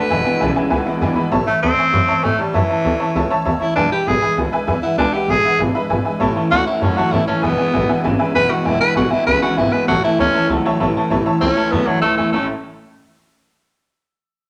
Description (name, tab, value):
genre	rock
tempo	196 BPM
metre	4/4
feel	straight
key	A major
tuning	A4 = 440 Hz
part	raspy tenor saxophone	melody	0.0-12.5 s	E3 to B4	-20 LUFS	equal	none
part	picked steel-string acoustic guitar	accompaniment	0.0-12.5 s	E2 to F#4	-28 LUFS	equal	none
part	tack piano	accompaniment	0.0-12.5 s	B4 to B5	-25 LUFS	equal	none
part	electric guitar through a small old amp	riff	0.0-1.3, 6.2-12.5 s	E2 to C#5	-23 LUFS	equal	none
part	upright bass	bass	0.0-12.5 s	E1 to A2	-24 LUFS	equal	none
room	moderate large studio reverb, RT60 1.1 s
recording	none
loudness	-17 LUFS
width	mono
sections	0.0-1.3 A section; 1.3-11.1 B section; 11.1-12.3 C section; 12.3-13.6 D section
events	none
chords	0.1 E7; 1.3 A; 3.8 E7; 6.2 A; 7.4 E7; 9.9 A